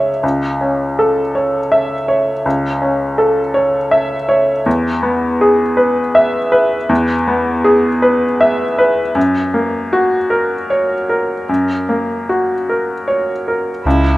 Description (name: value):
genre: neoclassical piano and strings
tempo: 53 BPM (dotted quarters)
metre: 6/8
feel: rubato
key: unclear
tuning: A4 = 440 Hz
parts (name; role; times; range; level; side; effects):
- bright upright piano; accompaniment; 0.0-14.2 s; C#2 to E5; -13 LUFS; equal; none
- warm viola; accompaniment; 13.8-14.2 s; E4; -19 LUFS; right 5 dB; none
- pure sine sub bass; bass; 13.9-14.2 s; C#2; -14 LUFS; equal; none
room: light reverb, small room ambience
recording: rough home demo mix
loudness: -13 LUFS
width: side -18 dB against mid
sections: 0.0-13.8 A section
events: none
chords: 0.2 A/C#; 4.7 E; 9.2 F#